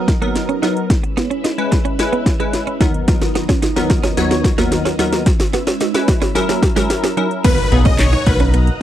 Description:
dance-pop; 110 BPM; 4/4; straight; B major; A4 = 440 Hz
wavetable chord stab; accompaniment; 0.0-8.8 s; D#2 to C#5; -20 LUFS; left 2 dB; sidechain pumping
ensemble organ-string; sustained chords; 0.0-8.8 s; D#2 to A#5; -26 LUFS; equal; phaser, ensemble chorus, sidechain pumping
direct-recorded clean electric guitar; riff; 0.0-8.7 s; G#3 to D#4; -22 LUFS; right 6 dB; analog chorus
house drum kit; drums; 0.1-8.8 s; crash cymbal, handclaps, hi-hat, kick drum, snare drum; -16 LUFS; equal; overdrive
supersaw chords; melody; 7.4-8.4 s; B4 to D#5; -20 LUFS; left 2 dB; slapback echo
impact; sound effects; 7.4-8.8 s; -24 LUFS; equal
chorused synth bass; bass; 7.7-8.7 s; B1; -14 LUFS; equal; sidechain pumping
little or no reverb; dry, close 1970s-style studio recording; -14 LUFS; side -12 dB against mid
0.0-7.4 A section; 7.4-8.8 B section
build-up 0.0-7.4; drum fill 0.0-7.4; drop 7.4-8.8; impact 7.4-8.8
0.0 Bmaj7; 0.9 C#m7; 2.8 Bmaj7/D#; 5.3 E6; 6.4 F#7; 7.4 Bmaj7
0.35 | 0.90 1.45 1.99 2.54 | 3.08 3.63 4.17 4.72 | 5.26 5.81 6.36 6.90 | 7.45 7.99 8.54

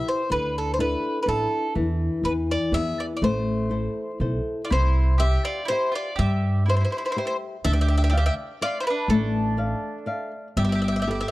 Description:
italian folk, Italian serenade; 123 BPM; 3/4; swing 55% on 8ths, rubato; A minor, C major from 4.7 s; A4 = 437 Hz
bowl-back mandolin; melody; 0.0-11.3 s; A4 to E5; -27 LUFS; equal
flamenco guitar; accompaniment; 0.0-11.3 s; D3 to F5; -27 LUFS; left 2 dB
upright bass; bass; 0.3-11.2 s; G1 to G2; -23 LUFS; right 1 dB
mandolin; second line; 4.6-11.3 s; D4 to A4; -34 LUFS; right 4 dB
small room ambience; dry, close 1970s-style studio recording; -22 LUFS; side -18 dB against mid
0.0-4.7 A section; 4.7-11.3 B section
0.3 Dsus2; 1.8 N.C.; 2.2 E; 3.2 Am; 4.7 C; 7.7 Dmadd9; 10.6 Gadd9
| 0.31 0.80 1.28 | 1.76 2.24 2.73 | 3.22 3.71 4.21 | 4.71 5.21 5.70 | 6.20 6.69 7.17 | 7.66 8.14 8.62 | 9.10 9.59 10.08 | 10.58 11.07

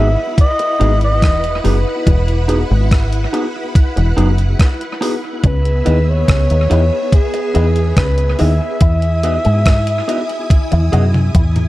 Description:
lovers rock reggae; 71 BPM; 4/4; straight; E major; A4 = 438 Hz
breathy alto saxophone; melody; 0.0-11.3 s; G#4 to E5; -20 LUFS; equal; tape echo
string machine, violins; second line; 0.0-11.7 s; B3 to D#6; -25 LUFS; equal; ensemble chorus
mellow tine electric piano; accompaniment; 0.0-11.1 s; B3 to G#4; -26 LUFS; left 3 dB; medium stereo tremolo, tape echo
electric guitar with an envelope filter; riff; 0.0-11.6 s; E3 to G#4; -26 LUFS; left 5 dB; ensemble chorus
electric guitar through a small old amp; stabs; 0.0-11.0 s; D#4 to D#5; -24 LUFS; right 4 dB
deep dub fingered electric bass; bass; 0.0-11.7 s; E1 to G#2; -14 LUFS; equal
crisp 8-bit digital drum machine; drums; 0.4-11.7 s; hi-hat, kick drum, rim click, toms; -14 LUFS; equal
little or no reverb; dark, warm production; -12 LUFS; side -17 dB against mid
0.0-11.7 A section
drum fill 10.5-11.7
0.0 Emaj7; 5.4 C#m9; 8.8 Emaj7
0.38 1.22 | 2.06 2.91 3.75 4.59 | 5.44 6.28 7.12 7.97 | 8.81 9.66 10.50 11.34

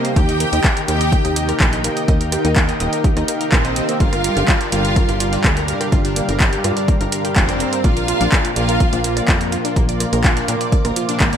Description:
melodic techno; 125 BPM; 4/4; straight; A4 = 440 Hz
soft supersaw; melody; 0.0-11.4 s; Bb3 to G4; -24 LUFS; right 1 dB; ensemble chorus, sidechain pumping, digital delay
warm studio violin section; second line; 0.0-11.4 s; Bb4 to G5; -27 LUFS; equal; sidechain pumping, ping-pong delay
lush unison pad; sustained chords; 0.0-11.4 s; D4 to G5; -28 LUFS; right 1 dB; chorus, sidechain pumping
analog pluck; arpeggios; 0.0-11.4 s; Bb3 to Eb6; -26 LUFS; right 1 dB; chorus, sidechain pumping, ping-pong delay
analog synth brass; stabs; 0.0-11.4 s; G2 to Eb4; -26 LUFS; left 2 dB; chorus, sidechain pumping, ping-pong delay
overtone-sweeping drone; drone; 0.0-11.4 s; C3; -35 LUFS; right 1 dB
punchy analog drum machine; drums; 0.0-11.4 s; handclaps, hi-hat, rim click; -22 LUFS; equal; gated reverb
ethereal airy pad; texture; 0.0-11.4 s; C4 to D6; -28 LUFS; equal; ensemble chorus, built-in reverb, tremolo, sidechain pumping
tight sequencer bass; bass; 0.2-11.4 s; Eb1 to Bb2; -21 LUFS; equal; sidechain pumping
electronic kick drum; drums; 0.2-11.3 s; -16 LUFS; equal
light reverb, digital ambience; bright 1980s-style digital production; -14 LUFS; side -8 dB against mid
0.0-11.4 A section
0.2 Eb; 4.0 Gm7; 7.8 Bb
| 0.16 0.64 1.12 1.60 | 2.08 2.56 3.04 3.52 | 4.00 4.48 4.96 5.44 | 5.92 6.40 6.88 7.36 | 7.84 8.32 8.80 9.28 | 9.76 10.24 10.72 11.20

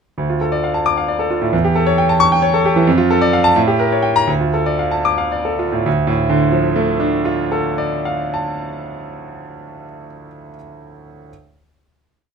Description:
classical, virtuoso piano study; 73-90 BPM (dotted quarters); 6/8; rubato; D minor; A4 = 443 Hz
bright concert grand piano; solo; 0.2-11.3 s; D2 to D6; -15 LUFS; equal
light reverb; -14 LUFS; side -6 dB against mid
0.2-5.9 A section; 5.9-9.1 final chord
slowing down 2.2-5.9
0.2 Dm; 1.5 A7/E; 2.9 Dm/F; 3.6 A7b9; 4.3 Dm
| 0.18 0.85 | 1.53 2.20 | 2.87 3.56 | 4.28 5.05 | 5.86 6.67 | 7.47 8.29

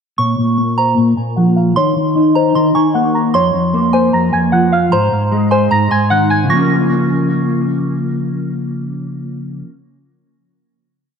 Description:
hip hop, trap; 152 BPM; 4/4; half-time; Bb minor; A4 = 440 Hz
soft synth bell; melody; 0.2-7.6 s; C5 to Bb6; -18 LUFS; left 1 dB; chorus, low-pass filter, tape echo
soft synth bell; second line; 0.2-7.6 s; Ab5 to Db6; -20 LUFS; right 4 dB; chorus, tape echo
mellow electric guitar; accompaniment; 0.2-9.7 s; F2 to Eb4; -14 LUFS; equal; ensemble chorus, low-pass filter
moderate lush hall reverb, RT60 2.5 s; dark, warm production; -12 LUFS; side -6 dB against mid
0.2-6.5 breakdown; 6.5-9.7 final chord
filter sweep 0.2-6.5
0.2 Bbm; 1.8 Eb5; 3.3 Fsus4; 4.9 Ab; 6.5 Bbm
| 0.18 0.58 0.97 1.37 | 1.76 2.16 2.55 2.94 | 3.34 3.73 4.13 4.52 | 4.92 5.31 5.71 6.10 | 6.50 6.89 7.29 7.68 | 8.08 8.47 8.87 9.26

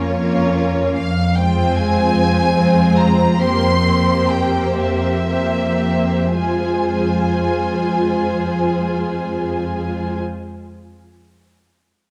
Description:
classical, slow romantic movement for string orchestra; 35-54 BPM (dotted quarters); 6/8; rubato; F minor; A4 = 440 Hz
warm symphonic violin section; melody; 0.0-10.2 s; Db5 to C6; -25 LUFS; equal
rich symphonic violin section; second line; 0.0-10.2 s; F4 to C5; -26 LUFS; equal
rich symphonic viola section; accompaniment; 0.0-10.2 s; Ab3 to F4; -23 LUFS; equal
rich symphonic cello section; bass; 0.0-10.2 s; F2; -22 LUFS; equal
wet concert hall reverb, RT60 2.0 s; dark, warm production; -17 LUFS; mono
0.0-6.4 A section; 6.4-9.4 B section
slowing down 0.0-6.4
0.0 Bbm/F; 1.0 Fm; 3.4 C7/F; 6.4 Fm
| 0.96 2.13 | 3.38 4.77 | 6.36 7.90

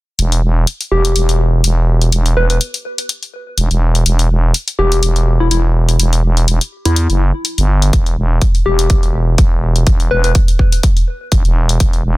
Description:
bass house; 124 BPM; 4/4; swing 55% on 16ths; E minor; A4 = 440 Hz
growling FM bass; bass; 0.2-12.2 s; E1 to E2; -13 LUFS; equal; tube saturation, sidechain pumping
electronic hi-hat; drums; 0.2-12.0 s; -19 LUFS; left 3 dB
soft struck synth lead; melody; 0.9-10.3 s; E4 to B4; -20 LUFS; left 3 dB; chorus, vintage 12-bit sampler grit, tape echo
electronic kick drum; drums; 7.9-11.9 s; -12 LUFS; equal
little or no reverb; dense, heavily limited modern master; -12 LUFS; side -19 dB against mid
0.2-12.2 A section
0.2 Em
| 0.19 0.67 1.16 1.64 | 2.12 2.61 3.09 3.58 | 4.06 4.54 5.03 5.51 | 6.00 6.48 6.96 7.45 | 7.93 8.41 8.90 9.38 | 9.87 10.35 10.83 11.32 | 11.80

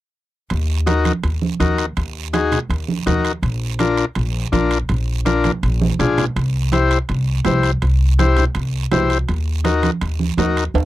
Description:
latin, cumbia; 164 BPM; 4/4; straight; A4 = 439 Hz
upright bass; bass; 0.5-10.8 s; Bb1 to Eb2; -19 LUFS; equal
congas; percussion; 0.5-10.8 s; -23 LUFS; right 4 dB
guiro; percussion; 0.5-10.8 s; -33 LUFS; right 14 dB
timbales; percussion; 0.5-10.8 s; -27 LUFS; right 7 dB
overdriven combo organ; accompaniment; 0.9-10.6 s; D4 to C5; -18 LUFS; left 4 dB
little or no reverb; dry, close 1970s-style studio recording; -16 LUFS; side -15 dB against mid
0.5-10.8 A section
drum fill 5.8-6.4
0.5 Ebm; 3.4 Bb7; 6.4 C; 9.3 Ebm
| 0.51 0.87 1.24 1.60 | 1.97 2.34 2.70 3.07 | 3.43 3.80 4.17 4.53 | 4.90 5.26 5.63 6.00 | 6.36 6.73 7.09 7.46 | 7.83 8.19 8.56 8.92 | 9.29 9.65 10.02 10.39 | 10.75

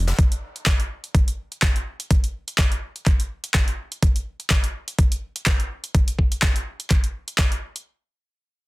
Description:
acid house; 125 BPM; 4/4; swing 55% on 16ths
punchy analog drum machine; drums; 0.1-7.8 s; handclaps, hi-hat; -25 LUFS; equal; overdrive
electronic kick drum; drums; 0.2-7.5 s; -19 LUFS; equal
little or no reverb; dense, heavily limited modern master; -20 LUFS; side -22 dB against mid
0.0-7.9 A section
| 0.18 0.67 1.15 1.62 | 2.10 2.58 3.06 3.54 | 4.03 4.50 4.99 5.46 | 5.95 6.42 6.91 7.38

